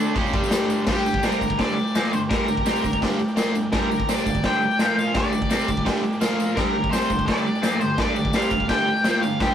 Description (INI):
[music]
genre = garage rock duo or trio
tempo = 168 BPM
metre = 4/4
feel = straight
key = G minor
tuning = A4 = 440 Hz
[part]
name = combo organ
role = sustained chords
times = 0.0-9.5 s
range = D4 to A5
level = -34 LUFS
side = equal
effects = none
[part]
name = biting overdriven guitar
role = riff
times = 0.0-9.5 s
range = G2 to D4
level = -25 LUFS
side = equal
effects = phaser
[part]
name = tambourine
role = percussion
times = 0.1-9.3 s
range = none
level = -41 LUFS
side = left 3 dB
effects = none
[part]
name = raw garage drum kit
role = drums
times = 0.2-9.5 s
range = crash cymbal, kick drum, snare drum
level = -23 LUFS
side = equal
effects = none
[part]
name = octave-fuzz lead guitar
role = melody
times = 0.9-9.5 s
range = G4 to G5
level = -24 LUFS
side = left 1 dB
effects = distortion
[sound]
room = moderate booth ambience, RT60 0.3 s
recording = rough rehearsal-room recording, warm saturation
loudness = -19 LUFS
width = side -9 dB against mid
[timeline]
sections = 0.9-9.5 A section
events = none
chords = 0.2 Gm; 4.8 Bb5; 5.2 Gm; 6.2 Bb5; 6.6 Gm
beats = 0.15 0.51 | 0.87 1.22 1.58 1.94 | 2.30 2.65 3.01 3.37 | 3.73 4.08 4.44 4.79 | 5.15 5.51 5.86 6.22 | 6.57 6.93 7.28 7.64 | 7.99 8.35 8.70 9.06 | 9.41